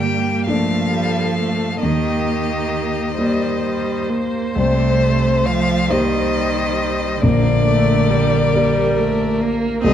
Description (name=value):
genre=classical, slow romantic movement for piano quintet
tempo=44 BPM (dotted quarters)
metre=6/8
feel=rubato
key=G minor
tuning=A4 = 440 Hz
part: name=rich violin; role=melody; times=0.0-9.9 s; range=C5 to G5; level=-22 LUFS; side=left 4 dB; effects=none
part: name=rich cello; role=second line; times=0.0-9.9 s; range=C3 to G3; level=-23 LUFS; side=right 7 dB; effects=none
part: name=rich violin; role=second line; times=0.0-9.9 s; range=G4 to C5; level=-26 LUFS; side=left 2 dB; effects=none
part: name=clear viola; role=accompaniment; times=0.0-9.9 s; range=G3 to C4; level=-23 LUFS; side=right 2 dB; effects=none
part: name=dark grand piano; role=accompaniment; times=0.0-9.9 s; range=Bb1 to D5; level=-20 LUFS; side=left 1 dB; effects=none
room=wet recital hall reverb, RT60 1.4 s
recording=dark, warm production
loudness=-15 LUFS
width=side -10 dB against mid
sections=0.0-9.9 A section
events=none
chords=0.0 Gm; 1.8 Ebmaj7; 4.6 Cm7; 7.2 Gm/Bb